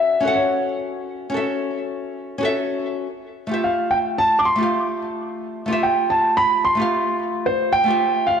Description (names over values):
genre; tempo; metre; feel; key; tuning
chillout; 110 BPM; 4/4; straight; unclear; A4 = 440 Hz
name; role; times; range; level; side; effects
dark grand piano; melody; 0.0-8.4 s; C5 to D6; -18 LUFS; equal; tape echo
nylon-string guitar; accompaniment; 0.0-8.4 s; A3 to F#5; -23 LUFS; left 1 dB; auto-pan, tape echo
room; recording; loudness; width
wet scoring stage reverb, RT60 1.6 s; none; -18 LUFS; side -7 dB against mid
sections
0.0-8.4 A section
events
none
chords
0.0 F#m7; 3.1 Fmaj9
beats
0.37 | 0.92 1.46 2.01 2.55 | 3.10 3.65 4.19 4.74 | 5.28 5.83 6.37 6.92 | 7.46 8.01